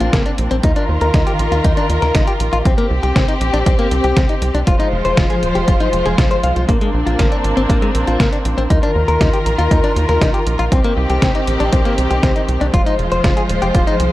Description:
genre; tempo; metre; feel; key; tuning
italo disco; 119 BPM; 4/4; straight; C minor; A4 = 441 Hz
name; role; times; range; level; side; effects
rich studio string section; sustained chords; 0.0-14.1 s; Eb3 to C5; -19 LUFS; equal; none
direct-recorded clean electric guitar; arpeggios; 0.0-13.9 s; Ab3 to F5; -20 LUFS; left 3 dB; spring reverb, tape echo
tight sequencer bass; bass; 0.0-14.1 s; Eb1 to Eb2; -19 LUFS; equal; tube saturation
detuned 8-bit digital drum machine; drums; 0.0-14.1 s; hi-hat, snare drum; -22 LUFS; equal; none
electronic kick drum; drums; 0.1-13.8 s; none; -17 LUFS; equal; overdrive
room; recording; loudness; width
little or no reverb; dry, gritty hardware recording, cassette tape; -13 LUFS; side -16 dB against mid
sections
0.0-14.1 A section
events
none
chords
0.0 Bbadd9; 0.6 Ebsus2; 2.7 C5; 4.7 Fm; 6.7 Bbadd9; 8.7 Ebsus2; 10.7 Cm; 12.7 Fm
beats
0.13 | 0.64 1.14 1.65 2.15 | 2.65 3.16 3.66 4.17 | 4.67 5.17 5.68 6.18 | 6.69 7.19 7.70 8.20 | 8.70 9.21 9.71 10.22 | 10.72 11.22 11.73 12.23 | 12.74 13.24 13.75

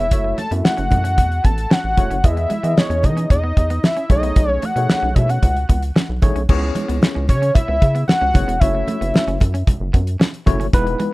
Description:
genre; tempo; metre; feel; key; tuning
early-eighties boogie funk; 113 BPM; 4/4; straight; F# dorian; A4 = 440 Hz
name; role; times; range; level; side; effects
fat analog lead; melody; 0.0-9.7 s; C#5 to A5; -21 LUFS; equal; chorus
tine electric piano; accompaniment; 0.0-11.1 s; G#3 to E5; -25 LUFS; left 2 dB; overdrive, fast stereo tremolo
clean electric guitar; riff; 0.0-11.1 s; G#3 to C#4; -29 LUFS; right 2 dB; wide subtle chorus
rubbery square bass; bass; 0.0-11.0 s; E1 to E3; -20 LUFS; equal; none
damped 70s drum kit; drums; 0.1-11.1 s; crash cymbal, hi-hat, kick drum, snare drum; -15 LUFS; equal; none
congas; percussion; 0.1-11.1 s; none; -30 LUFS; right 1 dB; none
room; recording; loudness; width
little or no reverb; rough home demo mix; -15 LUFS; side -20 dB against mid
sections
0.0-6.5 A section; 6.5-11.1 B section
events
none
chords
0.1 F#m7; 2.2 Emaj7; 4.1 B13; 6.5 C#m7; 8.6 F#m7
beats
| 0.12 0.65 1.18 1.71 | 2.24 2.77 3.30 3.83 | 4.36 4.89 5.42 5.96 | 6.49 7.02 7.55 8.08 | 8.61 9.14 9.67 10.20 | 10.73

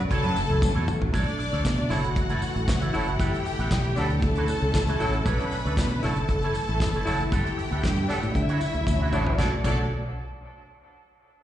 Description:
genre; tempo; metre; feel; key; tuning
disco; 116 BPM; 4/4; straight; B minor; A4 = 437 Hz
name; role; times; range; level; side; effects
warm analog pad; sustained chords; 0.0-9.6 s; B2 to F#4; -33 LUFS; left 1 dB; chorus, plate reverb
fingered electric bass; bass; 0.0-9.9 s; F#1 to D3; -26 LUFS; equal; none
bright studio string section; second line; 0.1-9.9 s; A3 to B5; -30 LUFS; left 1 dB; plate reverb, slapback echo
electric guitar with an envelope filter; accompaniment; 0.1-9.8 s; D4 to F#5; -34 LUFS; right 6 dB; plate reverb, slapback echo
damped 70s drum kit; drums; 0.1-9.8 s; crash cymbal, handclaps, hi-hat, kick drum, snare drum, toms; -28 LUFS; equal; none
tambourine; percussion; 0.4-9.9 s; none; -44 LUFS; left 2 dB; none
clear horn section; stabs; 1.9-9.8 s; F#3 to A4; -34 LUFS; left 1 dB; tape echo, plate reverb, slapback echo
room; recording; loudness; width
light reverb; live gig heard through the venue's PA, recital hall reverb, nothing above 10.3 kHz; -22 LUFS; side -12 dB against mid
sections
0.0-1.1 A section; 1.1-9.4 B section; 9.4-11.4 C section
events
drum fill 0.6-1.1, 8.9-9.4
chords
0.1 F#m7; 1.1 Bm9; 1.9 F#m7; 3.2 Gmaj9; 4.2 Dmaj9; 5.3 Bm9; 6.0 F#m7; 7.3 Gmaj9; 8.4 Dmaj9; 9.4 Bm9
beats
0.11 0.62 | 1.14 1.65 2.16 2.68 | 3.19 3.71 4.22 4.74 | 5.25 5.77 6.29 6.80 | 7.32 7.83 8.35 8.87 | 9.39

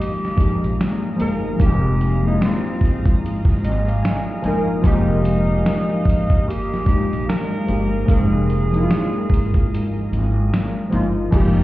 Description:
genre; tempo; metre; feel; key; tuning
lo-fi hip hop; 74 BPM; 4/4; swing 62% on 16ths; F minor; A4 = 435 Hz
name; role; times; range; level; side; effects
breathy tenor saxophone; melody; 0.0-10.5 s; C4 to Bb4; -28 LUFS; right 2 dB; analog delay, plate reverb
warbly lo-fi synth keys; accompaniment; 0.0-11.6 s; F3 to Ab5; -21 LUFS; left 1 dB; chorus, cassette tape, plate reverb
granular cloud pad; sustained chords; 0.0-11.6 s; Ab3 to Eb6; -29 LUFS; right 1 dB; built-in reverb, plate reverb
upright bass; bass; 0.0-11.6 s; F1 to Bb1; -22 LUFS; equal; none
dusty soul sampler-style drum kit; drums; 0.0-11.6 s; crash cymbal, hi-hat, kick drum, snare drum; -19 LUFS; equal; vintage 12-bit sampler grit
room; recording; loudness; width
light reverb; heard muffled through a wall, stone room reverb, EQ, nothing above 10.5 kHz; -16 LUFS; side -16 dB against mid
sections
0.0-11.3 A section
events
break 9.7-11.3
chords
0.0 Fm11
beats
0.79 | 1.60 2.41 3.22 4.03 | 4.84 5.65 6.46 7.27 | 8.08 8.89 9.71 10.52 | 11.33

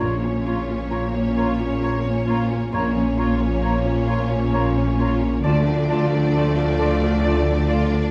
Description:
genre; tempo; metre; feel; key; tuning
cinematic, emotional film score for orchestra; 66 BPM; 3/4; rubato; unclear; A4 = 440 Hz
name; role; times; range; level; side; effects
rich studio violin section; melody; 0.0-8.1 s; C#5 to D5; -33 LUFS; equal; none
rich studio violin section; second line; 0.0-8.1 s; A3 to E#4; -35 LUFS; equal; none
small flute group; second line; 0.0-7.8 s; A5 to A#5; -37 LUFS; equal; none
warm clarinet; second line; 0.0-7.9 s; F4 to E#4; -35 LUFS; equal; none
warm cor anglais; second line; 0.0-7.9 s; C#5 to D5; -34 LUFS; equal; none
clear studio viola section; accompaniment; 0.0-8.1 s; A3 to A#3; -33 LUFS; equal; none
felt-muted upright piano; accompaniment; 0.0-8.1 s; A#1 to A#4; -29 LUFS; equal; none
mellow French horn section; sustained chords; 0.0-8.1 s; E#3 to D4; -31 LUFS; equal; none
concert harp; arpeggios; 0.0-8.1 s; A#2 to A5; -35 LUFS; equal; none
rich studio cello section; bass; 0.0-8.1 s; A#2 to D3; -27 LUFS; equal; none
rich studio double bass section; bass; 0.0-8.1 s; A#1 to D2; -27 LUFS; equal; none
room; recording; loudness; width
moderate scoring stage reverb, RT60 2.1 s; dark, warm production; -21 LUFS; mono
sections
0.0-8.1 A section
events
none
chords
0.0 A#m; 5.4 Dm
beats
| 0.01 0.93 1.83 | 2.73 3.63 4.53 | 5.45 6.34 7.24

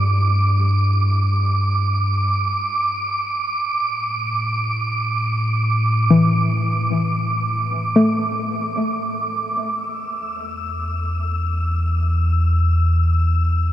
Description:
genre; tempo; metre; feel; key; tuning
ambient; free time; none; none; unclear; A4 = 440 Hz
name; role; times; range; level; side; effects
soft round pluck; arpeggios; 0.0-9.9 s; E3 to A3; -21 LUFS; left 2 dB; chorus, cassette tape, diffuse ambient delay
deep rumbling drone; bass; 0.0-13.7 s; E2 to A2; -19 LUFS; equal; built-in reverb
wind-like tuned noise texture; texture; 0.0-13.7 s; D6 to E6; -23 LUFS; right 2 dB; built-in reverb
room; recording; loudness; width
moderate huge ambient reverb, RT60 8.5 s; cassette tape; -17 LUFS; side -12 dB against mid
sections
0.0-9.6 A section; 9.6-13.7 B section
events
none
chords
0.0 G5; 3.1 A5; 9.6 N.C.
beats
free time

